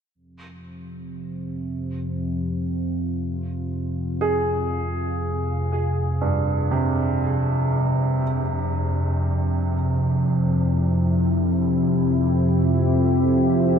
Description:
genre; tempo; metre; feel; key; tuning
dark ambient drone; free time; none; none; F harmonic minor; A4 = 442 Hz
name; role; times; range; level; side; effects
analog drone; drone; 0.5-13.8 s; F2 to C3; -21 LUFS; equal; chorus
deep dark ambient pad; sustained chords; 2.8-13.8 s; C4 to F5; -32 LUFS; equal; chorus, built-in reverb
warm baby grand piano; arpeggios; 4.2-12.7 s; G2 to Ab4; -26 LUFS; right 3 dB; tape echo
room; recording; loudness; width
wet cathedral reverb, RT60 5.6 s; none; -20 LUFS; side -7 dB against mid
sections
0.2-13.8 A section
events
fade-in on ambient pad 0.2-13.8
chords
0.2 Fm; 8.2 F5

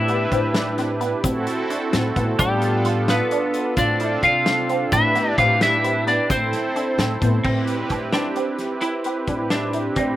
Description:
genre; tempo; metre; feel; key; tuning
progressive instrumental, band music in an uneven meter; 262 BPM (eighths); 11/8; straight; A minor; A4 = 440 Hz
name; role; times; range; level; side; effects
lightly driven lead guitar; melody; 0.0-10.2 s; C4 to F5; -22 LUFS; equal; none
semi-hollow electric guitar; second line; 0.0-7.2 s; G3 to F4; -27 LUFS; left 4 dB; phaser
brassy analog pad; accompaniment; 0.0-10.2 s; B3 to C5; -24 LUFS; right 2 dB; chorus, slapback echo
resonant blip pluck; arpeggios; 0.0-10.1 s; B3 to F4; -28 LUFS; right 1 dB; phaser
upright bass; bass; 0.0-10.2 s; A2 to C3; -25 LUFS; equal; none
loose indie drum kit; drums; 0.1-10.1 s; crash cymbal, hi-hat, kick drum, snare drum; -27 LUFS; left 1 dB; none
egg shaker; percussion; 0.3-7.3 s; none; -40 LUFS; right 4 dB; none
room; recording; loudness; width
little or no reverb; none; -18 LUFS; side -14 dB against mid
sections
0.0-7.4 A section; 7.4-10.2 B section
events
none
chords
0.0 Cmaj7/A; 1.2 D7/A; 2.4 G7/A; 3.8 Dm7/A; 4.9 Cmaj7/A; 6.3 Amadd9; 7.4 Am9

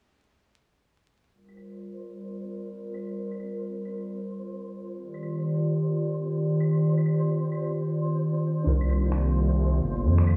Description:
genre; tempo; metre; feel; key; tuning
future garage; 131 BPM; 4/4; swing 63% on 16ths; G minor; A4 = 442 Hz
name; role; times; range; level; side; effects
warbly tape-like pad; sustained chords; 1.3-10.4 s; C3 to D5; -30 LUFS; equal; chorus, built-in reverb, vintage 12-bit sampler grit
flickering grainy texture; texture; 1.8-10.4 s; C5; -43 LUFS; equal; built-in reverb
electronic claves, shaker and finger snaps; drums; 1.5-10.4 s; none; -47 LUFS; equal; none
muted felt-like synth keys; accompaniment; 8.6-10.4 s; D4 to C5; -38 LUFS; equal; chorus, dub echo
swelling detuned saw bass; bass; 8.7-10.4 s; G1 to F2; -24 LUFS; equal; tube saturation
room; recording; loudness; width
light reverb, digital ambience; played on a big sound system in a bare room, large studio reverb, vinyl crackle, low-pass filter, small room ambience; -27 LUFS; mono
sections
1.3-10.4 A section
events
none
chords
1.3 Gm7; 5.0 Ebmaj9; 8.7 Cm11

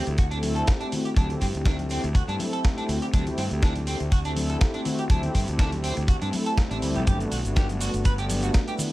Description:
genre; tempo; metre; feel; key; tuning
nu-disco, nu disco; 122 BPM; 4/4; swing 54% on 16ths; unclear; A4 = 438 Hz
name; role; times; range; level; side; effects
warm analog pad; accompaniment; 0.0-8.9 s; G3 to A4; -30 LUFS; left 1 dB; chorus, vintage 12-bit sampler grit, sidechain pumping, slapback echo
electric guitar at the edge of break-up; riff; 0.0-8.7 s; C4 to B4; -33 LUFS; right 2 dB; wide subtle chorus, slapback echo
fuzz fingered electric bass; bass; 0.1-8.5 s; G1 to G2; -28 LUFS; equal; overdrive
dusty soul sampler-style drum kit; drums; 0.1-8.9 s; hi-hat, shaker, snare drum; -34 LUFS; right 1 dB; studio reverb
tube shaker and congas; percussion; 0.1-8.9 s; none; -36 LUFS; left 2 dB; none
kick drum; drums; 0.2-8.7 s; none; -22 LUFS; equal; studio reverb
room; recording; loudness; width
studio ambience; none; -22 LUFS; side -17 dB against mid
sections
0.0-8.9 A section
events
none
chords
0.0 D7sus4; 7.1 Gmaj7

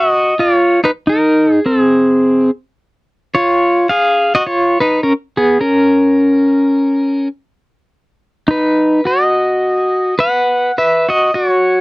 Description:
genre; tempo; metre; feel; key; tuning
hawaiian; 105 BPM; 4/4; swing 58% on 8ths; B major from 7.9 s; A4 = 440 Hz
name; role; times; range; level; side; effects
pedal steel guitar; solo; 0.0-11.8 s; B3 to F#5; -11 LUFS; equal; none
room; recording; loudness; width
light reverb; dry, close 1970s-style studio recording; -11 LUFS; side -23 dB against mid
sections
0.0-7.9 A section; 7.9-11.8 B section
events
none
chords
0.0 F#5; 1.0 G#; 3.3 C#add9; 5.6 N.C.; 7.9 B; 10.2 F#sus4

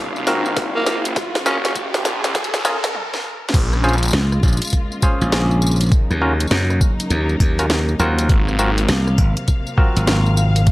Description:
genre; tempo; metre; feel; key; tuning
glitch hop; 101 BPM; 4/4; swing 64% on 16ths; unclear; A4 = 440 Hz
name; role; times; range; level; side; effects
dark studio string section; sustained chords; 0.0-10.7 s; C3 to F5; -27 LUFS; equal; sidechain pumping
phased detuned saw bass; bass; 0.0-4.1, 8.3-8.9 s; Gb1 to Db2; -21 LUFS; equal; phaser, high-pass filter
riser; sound effects; 0.0-2.9 s; none; -26 LUFS; equal; none
drum and bass drum kit; drums; 0.2-10.7 s; crash cymbal, hi-hat, rim click, snare drum, tambourine, toms; -22 LUFS; equal; none
auto-wah clav; stabs; 0.3-10.7 s; C4 to C5; -24 LUFS; equal; vintage 12-bit sampler grit, sidechain pumping, digital delay
electronic kick drum; drums; 0.6-10.7 s; none; -16 LUFS; equal; none
growling tenor saxophone; melody; 0.8-1.7 s; Bb3 to Db4; -25 LUFS; equal; digital delay
slap bass; bass; 4.1-10.7 s; Ab1 to Gb2; -17 LUFS; equal; none
room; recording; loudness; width
light reverb; vinyl crackle, high-pass filter, lossy compression artefacts; -15 LUFS; side -18 dB against mid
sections
0.0-3.5 A section; 3.5-10.7 B section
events
build-up 0.0-3.5; drum fill 0.0-2.9, 2.9-3.5; riser 0.0-2.9; filter sweep on string section 0.0-3.5; stop 2.9-3.5; drop 3.5-10.7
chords
0.0 Ab13; 1.2 Gbmaj7; 3.5 Bbm7; 5.9 Ebm7; 8.3 Ab13

